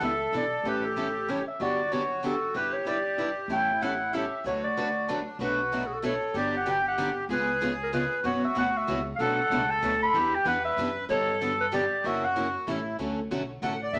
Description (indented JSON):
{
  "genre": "acoustic string swing (jazz manouche)",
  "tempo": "189 BPM",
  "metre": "3/4",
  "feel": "swing 58% on 8ths",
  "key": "D major, B minor from 5.4 s",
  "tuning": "A4 = 440 Hz",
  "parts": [
    { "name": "growling clarinet", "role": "melody", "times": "0.0-12.6 s", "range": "G#4 to B5", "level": "-31 LUFS", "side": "equal", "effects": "none" },
    { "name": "accordion", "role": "second line", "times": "0.0-14.0 s", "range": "D4 to F#5", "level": "-33 LUFS", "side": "equal", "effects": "none" },
    { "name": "picked plugged-in steel-string acoustic guitar", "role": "accompaniment", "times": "0.0-14.0 s", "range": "B2 to B4", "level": "-37 LUFS", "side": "equal", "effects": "none" },
    { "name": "picked steel-string acoustic guitar", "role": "accompaniment", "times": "0.0-14.0 s", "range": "B2 to B4", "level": "-38 LUFS", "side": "equal", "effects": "none" },
    { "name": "upright bass", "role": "bass", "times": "0.0-14.0 s", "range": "G1 to G2", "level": "-42 LUFS", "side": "equal", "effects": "none" }
  ],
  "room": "moderate studio reverb, RT60 0.9 s",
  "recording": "none",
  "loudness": "-28 LUFS",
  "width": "mono",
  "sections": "0.0-5.4 A section; 5.4-13.0 B section; 13.0-14.0 C section",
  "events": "accordion solo 13.0-14.0",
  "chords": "0.0 Em7; 0.6 A7; 1.6 Gmaj7; 2.5 Em7/G; 3.5 A7; 4.4 D6; 5.4 Bm7; 6.3 Gmaj7; 7.3 C#7; 8.2 F#7sus4; 9.2 Bm7; 10.1 Em7; 11.1 Gmaj7; 12.0 F#7; 12.7 A7; 13.0 Dmaj7",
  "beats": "0.01 0.32 | 0.64 0.96 1.28 | 1.59 1.91 2.23 | 2.55 2.86 3.18 | 3.50 3.81 4.13 | 4.45 4.76 5.08 | 5.40 5.71 6.03 | 6.34 6.66 6.98 | 7.29 7.61 7.92 | 8.24 8.56 8.87 | 9.19 9.51 9.82 | 10.14 10.46 10.77 | 11.09 11.41 11.72 | 12.04 12.36 12.68 | 12.99 13.31 13.63 | 13.94"
}